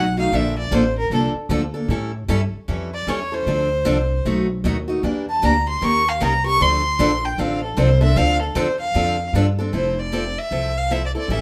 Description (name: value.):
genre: acoustic string swing (jazz manouche).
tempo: 153 BPM.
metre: 4/4.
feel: swing 62% on 8ths.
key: D minor.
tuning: A4 = 440 Hz.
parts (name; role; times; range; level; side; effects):
warm violin; melody; 0.0-11.4 s; A4 to C#6; -24 LUFS; equal; none.
picked steel-string acoustic guitar; accompaniment; 0.0-11.4 s; B2 to Bb4; -25 LUFS; equal; none.
upright bass; bass; 0.0-11.4 s; F1 to A2; -25 LUFS; equal; none.
room: moderate studio reverb, RT60 0.8 s.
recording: none.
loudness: -20 LUFS.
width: mono.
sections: 0.0-9.7 A section; 9.7-11.4 B section.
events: violin solo 0.0-9.7.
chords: 0.3 Bbmaj7; 1.9 A7; 3.5 Dm7; 4.2 B7; 5.0 Em7b5; 5.8 Eb6; 6.6 Dm7; 9.7 Fmaj7.